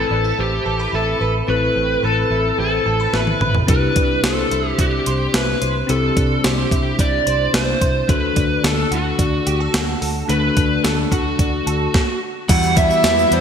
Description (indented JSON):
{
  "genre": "1980s-style pop",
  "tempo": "109 BPM",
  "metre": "4/4",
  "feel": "straight",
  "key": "unclear",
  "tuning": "A4 = 440 Hz",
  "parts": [
    { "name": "lead guitar through a small cranked amp", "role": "melody", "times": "0.0-13.4 s", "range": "F#4 to F#5", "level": "-20 LUFS", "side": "equal", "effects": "overdrive, wide subtle chorus" },
    { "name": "bell-like tine electric piano", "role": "accompaniment", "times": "0.0-13.4 s", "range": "A2 to B4", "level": "-23 LUFS", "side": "left 5 dB", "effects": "lush chorus" },
    { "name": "direct-recorded clean electric guitar", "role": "riff", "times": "0.0-13.4 s", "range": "G3 to C5", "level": "-27 LUFS", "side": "right 6 dB", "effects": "ensemble chorus" },
    { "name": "vintage muted fingered electric bass", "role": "bass", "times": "0.0-13.4 s", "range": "A1 to E2", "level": "-23 LUFS", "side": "equal", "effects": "none" },
    { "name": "clean 12-bit digital drum machine", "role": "drums", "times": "3.1-13.4 s", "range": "crash cymbal, hi-hat, kick drum, snare drum, tambourine, toms", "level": "-19 LUFS", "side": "equal", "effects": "gated reverb" },
    { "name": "chorused pulse-width pad", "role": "sustained chords", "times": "12.5-13.4 s", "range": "G3 to E6", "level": "-28 LUFS", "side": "left 1 dB", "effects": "none" },
    { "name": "clear horn section", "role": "stabs", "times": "12.5-13.4 s", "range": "G3 to E4", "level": "-26 LUFS", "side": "left 2 dB", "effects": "none" },
    { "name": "tube shaker", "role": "percussion", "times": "12.5-13.3 s", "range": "none", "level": "-33 LUFS", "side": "right 7 dB", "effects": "none" }
  ],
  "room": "moderate lush hall reverb, RT60 2.1 s",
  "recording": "bright 1980s-style digital production",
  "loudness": "-15 LUFS",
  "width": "side -7 dB against mid",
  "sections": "0.0-12.5 A section",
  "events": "drum fill 3.1-3.7",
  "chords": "0.0 Amadd9; 3.7 Cadd9; 8.1 D; 12.5 Emadd9"
}